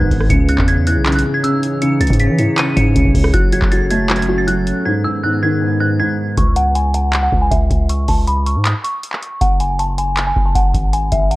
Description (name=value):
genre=hip hop, trap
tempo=158 BPM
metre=4/4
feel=half-time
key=C# minor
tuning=A4 = 439 Hz
part: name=dark detuned synth bell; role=melody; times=0.0-11.4 s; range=E5 to D#7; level=-20 LUFS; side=equal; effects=chorus, low-pass filter, digital delay
part: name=dark concert grand piano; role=accompaniment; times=0.0-6.4 s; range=G#2 to A3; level=-17 LUFS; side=equal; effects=low-pass filter
part: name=warbly tape-like pad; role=sustained chords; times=0.0-6.4 s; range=D#3 to C#5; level=-25 LUFS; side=equal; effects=chorus, built-in reverb
part: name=long sustained 808-style bass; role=bass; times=0.0-11.4 s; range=F#1 to E3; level=-17 LUFS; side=equal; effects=none
part: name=booming analog drum machine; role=drums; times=0.0-11.4 s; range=handclaps, hi-hat, kick drum, rim click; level=-17 LUFS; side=equal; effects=none
room=digital ambience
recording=worn, warbling old tape, cassette tape, warbly pitch drift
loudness=-13 LUFS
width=side -19 dB against mid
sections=0.0-6.4 A section; 6.4-11.4 B section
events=drums muted 4.9-6.4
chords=0.3 C#madd9; 3.3 F#m; 4.9 G#m; 6.4 N.C.; 9.4 F#sus2